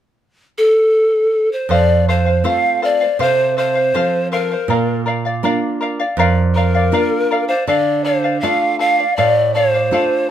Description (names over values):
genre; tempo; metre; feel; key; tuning
andean folk; 80 BPM; 4/4; straight; unclear; A4 = 440 Hz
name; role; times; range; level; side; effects
breathy reedy pan flute; melody; 0.6-10.3 s; A4 to F5; -15 LUFS; equal; none
charango; accompaniment; 1.7-10.3 s; A4 to F5; -20 LUFS; left 2 dB; none
nylon-string guitar; accompaniment; 1.7-10.3 s; F2 to F4; -19 LUFS; right 3 dB; none
room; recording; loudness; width
wet studio reverb, RT60 0.6 s; minimal, uncompressed stereo recording; -13 LUFS; side -10 dB against mid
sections
0.0-1.7 A section; 1.7-10.3 B section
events
none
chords
0.0 N.C.; 1.7 F; 4.7 Bb; 7.7 Dm